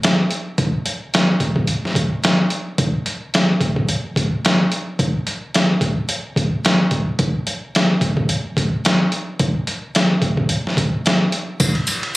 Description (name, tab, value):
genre	indie pop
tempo	109 BPM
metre	4/4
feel	swing 55% on 16ths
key	none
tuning	none
part	trip hop sampler-style drum kit	drums	0.0-12.1 s	hi-hat, kick drum, ride cymbal, snare drum	-16 LUFS	equal	overdrive
part	tambourine	percussion	11.6-12.0 s	none	-19 LUFS	left 1 dB	none
room	moderate spring reverb, RT60 1.3 s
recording	recorded on a phone in the room, club reverb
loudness	-16 LUFS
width	side -19 dB against mid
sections	0.0-11.6 A section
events	none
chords	none